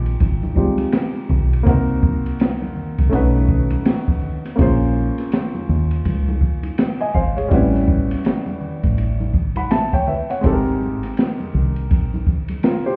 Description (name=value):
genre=hip hop, jazz-hop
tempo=82 BPM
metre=4/4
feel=swing 62% on 16ths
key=unclear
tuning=A4 = 440 Hz
part: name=dark upright piano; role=accompaniment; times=0.0-13.0 s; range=G3 to B5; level=-24 LUFS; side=equal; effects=none
part: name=deep dub fingered electric bass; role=bass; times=0.0-12.2 s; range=Ab1 to Eb2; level=-22 LUFS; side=equal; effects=none
part: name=open jazz drum kit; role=drums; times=0.1-12.8 s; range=hi-hat, kick drum, ride cymbal, snare drum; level=-22 LUFS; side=equal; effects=none
part: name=tube shaker and congas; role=percussion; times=0.1-13.0 s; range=none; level=-31 LUFS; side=equal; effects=none
room=light reverb, small room ambience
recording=heard muffled through a wall, club reverb, vinyl crackle, EQ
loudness=-19 LUFS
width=mono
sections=0.0-13.0 A section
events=none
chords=0.0 Fm9; 1.7 Cm7b5; 3.1 B9; 4.6 Bbm9; 7.5 A13; 10.4 Abmaj9